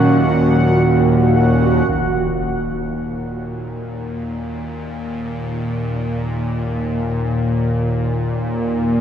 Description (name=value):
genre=dark ambient drone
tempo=free time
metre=none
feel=none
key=Eb minor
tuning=A4 = 440 Hz
part: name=sweeping resonant pad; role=sustained chords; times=0.0-1.9 s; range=Gb3 to Bb4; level=-22 LUFS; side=equal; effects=chorus
part: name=bowed-like drone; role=drone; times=0.0-9.0 s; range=Eb2 to Bb2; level=-18 LUFS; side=equal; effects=built-in reverb
part: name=bubbling stepped-filter texture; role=texture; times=0.0-1.9 s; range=Gb4 to Gb5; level=-21 LUFS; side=right 2 dB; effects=chorus, built-in reverb
part: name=impact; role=percussion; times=1.9-2.1 s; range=none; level=-31 LUFS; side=equal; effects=low-pass filter on sfx
room=wet cathedral reverb, RT60 5.2 s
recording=in a vast, echoing space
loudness=-16 LUFS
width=side -9 dB against mid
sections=0.0-1.9 A section; 1.9-9.0 B section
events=fade-in on synth drone 1.9-9.0; fade-in on impacts and reversed cymbals 1.9-9.0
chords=0.0 Ebm; 1.9 Eb5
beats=free time